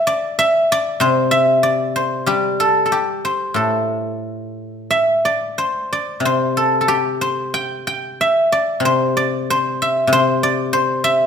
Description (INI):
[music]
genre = chinese traditional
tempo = 92 BPM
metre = 4/4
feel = uneven beats, rubato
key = C gong mode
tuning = A4 = 440 Hz
[part]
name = guzheng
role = solo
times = 0.0-11.3 s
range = A2 to G5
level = -15 LUFS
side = left 1 dB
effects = none
[sound]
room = moderate recital hall reverb, RT60 1.4 s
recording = minimal, uncompressed stereo recording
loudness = -15 LUFS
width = side -7 dB against mid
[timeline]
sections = 0.0-11.3 A section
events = none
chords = none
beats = 0.39 1.01 1.64 | 2.28 2.92 3.55 4.21 | 4.89 5.57 6.23 6.87 | 7.53 8.18 8.83 9.47 | 10.11 10.72